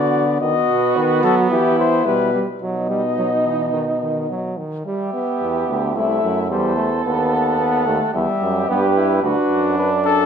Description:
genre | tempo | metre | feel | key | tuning
classical, imitative canzona for brass ensemble | 109 BPM | 4/4 | straight | E minor | A4 = 439 Hz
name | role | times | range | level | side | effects
dark trumpet | melody | 0.0-10.3 s | G4 to F#5 | -22 LUFS | left 10 dB | none
mellow flugelhorn | second line | 0.0-10.3 s | D4 to A4 | -23 LUFS | right 5 dB | none
bright trombone | accompaniment | 0.0-10.3 s | D#3 to E4 | -22 LUFS | right 2 dB | none
warm euphonium | bass | 0.0-10.3 s | C2 to F#3 | -22 LUFS | right 2 dB | none
room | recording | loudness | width
wet recital hall reverb, RT60 1.4 s | minimal, uncompressed stereo recording | -16 LUFS | side -7 dB against mid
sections
0.0-4.9 A section; 4.9-10.3 B section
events
none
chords
0.4 B; 1.5 Em; 2.6 B; 4.9 Em/G; 6.0 Am/C; 7.0 B/D#; 8.1 Em; 9.2 Bm/D

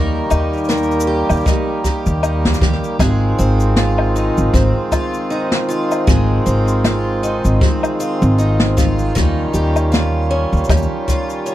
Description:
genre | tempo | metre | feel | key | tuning
folktronica | 78 BPM | 4/4 | swing 56% on 16ths | Ab major from 3.0 s | A4 = 440 Hz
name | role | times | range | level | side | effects
hand-pumped harmonium | sustained chords | 0.0-11.5 s | Eb3 to G4 | -21 LUFS | right 1 dB | none
picked twelve-string acoustic guitar | arpeggios | 0.0-11.5 s | Eb3 to Bb4 | -22 LUFS | equal | tape echo
upright bass | bass | 0.0-10.9 s | Ab1 to Eb2 | -16 LUFS | equal | none
woodblock, cabasa and snare drum | drums | 0.3-11.5 s | none | -21 LUFS | left 2 dB | none
kick drum | drums | 1.5-11.3 s | none | -18 LUFS | equal | none
room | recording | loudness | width
studio reverb | none | -14 LUFS | side -13 dB against mid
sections
0.0-3.0 A section; 3.0-11.5 B section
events
none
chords
0.0 Eb; 3.0 Ab6; 9.2 Eb9

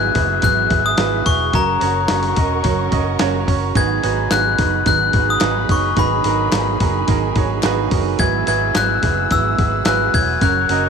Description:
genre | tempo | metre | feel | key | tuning
piano-driven pop | 108 BPM | 4/4 | straight | unclear | A4 = 441 Hz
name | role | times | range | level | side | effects
glockenspiel with brass mallets | melody | 0.0-10.9 s | A#5 to G#6 | -19 LUFS | left 7 dB | slapback echo
bright upright piano | accompaniment | 0.0-10.9 s | G#2 to D#5 | -22 LUFS | right 13 dB | none
warm studio string section | sustained chords | 0.0-10.9 s | G#4 to E6 | -30 LUFS | equal | none
fingerpicked steel-string acoustic guitar | riff | 0.0-10.9 s | G#2 to A#4 | -26 LUFS | right 15 dB | none
vintage muted fingered electric bass | bass | 0.0-10.9 s | E1 to G#1 | -23 LUFS | left 1 dB | none
dusty soul sampler-style drum kit | drums | 0.2-10.8 s | hi-hat, kick drum, snare drum | -20 LUFS | left 1 dB | none
group handclap | percussion | 4.3-10.0 s | none | -29 LUFS | left 18 dB | none
room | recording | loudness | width
small room ambience | 1960s-style stereo with parts hard left and right | -14 LUFS | side -6 dB against mid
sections
0.0-10.9 A section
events
none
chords
0.0 Eadd9; 1.5 F#; 3.8 G#m7; 8.2 Eadd9

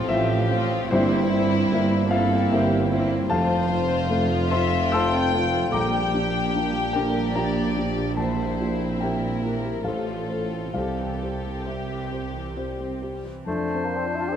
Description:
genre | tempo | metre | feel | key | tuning
classical | 64-78 BPM | 3/4 | rubato | F major | A4 = 440 Hz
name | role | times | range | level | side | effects
warm grand piano | melody | 0.0-14.4 s | A1 to E6 | -25 LUFS | left 1 dB | none
warm studio violin section | melody | 0.0-13.3 s | E4 to G4 | -33 LUFS | left 6 dB | none
dark studio violin section | second line | 0.0-13.0 s | E4 to G5 | -30 LUFS | left 5 dB | none
rich studio viola section | accompaniment | 0.0-13.5 s | C3 to D4 | -32 LUFS | right 3 dB | none
dark studio double bass section | bass | 0.1-13.3 s | F1 to C2 | -32 LUFS | right 4 dB | none
warm studio cello section | bass | 0.1-13.3 s | F2 to C3 | -32 LUFS | right 4 dB | none
warm tuba | bass | 0.1-13.3 s | F1 to C2 | -31 LUFS | right 4 dB | none
clear oboe | second line | 13.5-14.4 s | C5 | -32 LUFS | equal | none
mellow hollow large flute ensemble | second line | 13.5-14.4 s | A5 | -33 LUFS | left 4 dB | none
mellow bassoon | accompaniment | 13.5-14.4 s | A3 to A4 | -29 LUFS | right 1 dB | none
dark French horn section | sustained chords | 13.5-14.4 s | D4 | -30 LUFS | left 6 dB | none
room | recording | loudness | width
moderate concert hall reverb, RT60 2.0 s | close, detailed microphones | -21 LUFS | side -9 dB against mid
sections
0.0-13.5 A section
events
none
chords
0.0 F/A; 0.9 C7/G; 3.3 F; 5.7 Gm/Bb; 8.2 C7/Bb; 9.8 F/A; 10.7 C; 13.5 F

